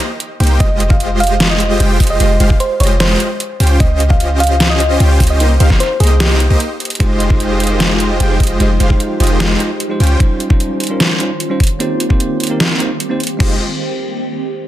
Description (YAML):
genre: future bass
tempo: 150 BPM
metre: 4/4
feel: half-time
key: F minor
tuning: A4 = 440 Hz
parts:
  - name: dubstep drum kit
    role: drums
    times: 0.0-13.5 s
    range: crash cymbal, hi-hat, snare drum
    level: -17 LUFS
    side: equal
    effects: none
  - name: supersaw chords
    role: riff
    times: 0.4-10.2, 13.4-13.6 s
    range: Ab3 to G5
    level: -18 LUFS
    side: equal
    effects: sidechain pumping, dub echo
  - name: warm 808-style bass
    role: bass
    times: 0.4-10.2, 13.4-13.6 s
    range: F1 to Db2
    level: -13 LUFS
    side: equal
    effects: sidechain pumping
  - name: thumb-piano-like synth pluck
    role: melody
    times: 0.6-6.9 s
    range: G4 to F5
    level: -19 LUFS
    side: right 1 dB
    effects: chorus, sidechain pumping, dub echo
  - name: electronic kick drum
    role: drums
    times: 0.6-13.5 s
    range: none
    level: -12 LUFS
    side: equal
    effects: none
  - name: bell-like tine electric piano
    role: accompaniment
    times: 7.0-13.6 s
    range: G3 to C5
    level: -20 LUFS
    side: right 2 dB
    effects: sidechain pumping, dub echo
  - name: shimmering ambient pad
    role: sustained chords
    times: 8.4-13.6 s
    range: Eb3 to C5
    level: -23 LUFS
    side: equal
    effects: chorus, built-in reverb, phaser, sidechain pumping
room: light reverb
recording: dense, heavily limited modern master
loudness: -11 LUFS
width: side -13 dB against mid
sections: 0.0-7.0 A section; 7.0-13.4 B section; 13.4-14.7 C section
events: drop 0.0-7.0; break 6.6-7.0; drum fill 6.8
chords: 0.0 Cm7; 0.6 Fm9; 3.6 Dbmaj9#11; 5.4 Cm7; 7.0 Fm9; 10.0 Dbmaj9#11; 11.8 Cm7; 13.4 Fm9